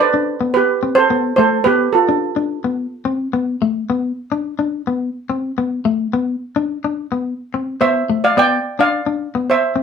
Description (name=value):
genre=highlife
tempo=107 BPM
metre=4/4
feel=straight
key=unclear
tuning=A4 = 443 Hz
part: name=steel pan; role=melody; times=0.0-3.0, 7.8-9.8 s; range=F4 to G5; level=-14 LUFS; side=right 4 dB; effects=none
part: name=clean electric guitar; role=accompaniment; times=0.0-9.8 s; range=A3 to D4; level=-19 LUFS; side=left 5 dB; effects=none
room=wet small room reverb, RT60 0.5 s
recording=band playing live in one room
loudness=-16 LUFS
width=side -6 dB against mid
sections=0.0-9.8 A section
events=none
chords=0.0 G (rootless); 0.6 C5; 1.7 Gadd9; 2.8 F; 3.9 Bm; 5.0 Amadd9; 6.1 Bm; 7.3 Amadd9; 8.4 Bdim